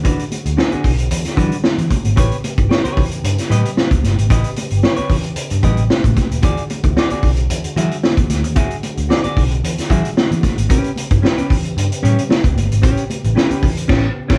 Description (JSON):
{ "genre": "funk", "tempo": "113 BPM", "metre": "4/4", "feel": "straight", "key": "unclear", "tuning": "A4 = 440 Hz", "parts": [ { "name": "semi-hollow electric guitar", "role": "accompaniment", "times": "0.0-14.4 s", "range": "C#4 to E5", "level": "-24 LUFS", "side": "equal", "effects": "none" }, { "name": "mellow tonewheel organ", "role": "sustained chords", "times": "0.0-14.4 s", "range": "C#3 to G4", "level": "-29 LUFS", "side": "equal", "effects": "fast rotary speaker, chorus vibrato" }, { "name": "vintage muted picked electric bass", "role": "bass", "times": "0.0-14.4 s", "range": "D#1 to E3", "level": "-20 LUFS", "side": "equal", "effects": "none" }, { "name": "vintage drum kit", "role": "drums", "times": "0.0-14.4 s", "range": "crash cymbal, hi-hat, kick drum, snare drum", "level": "-19 LUFS", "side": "equal", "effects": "none" }, { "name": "congas", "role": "percussion", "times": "0.0-13.5 s", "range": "none", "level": "-28 LUFS", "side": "equal", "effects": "none" } ], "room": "moderate small room reverb, RT60 0.5 s", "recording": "band playing live in one room, vinyl crackle", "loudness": "-16 LUFS", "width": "mono", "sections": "0.0-14.4 A section", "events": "band accent 13.9-14.4", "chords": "0.0 E9; 2.2 A9; 6.4 E9; 10.7 A9", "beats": "| 0.05 0.58 1.11 1.64 | 2.18 2.71 3.24 3.77 | 4.30 4.84 5.37 5.90 | 6.44 6.97 7.50 8.04 | 8.57 9.10 9.64 10.17 | 10.70 11.24 11.77 12.30 | 12.83 13.36 13.90" }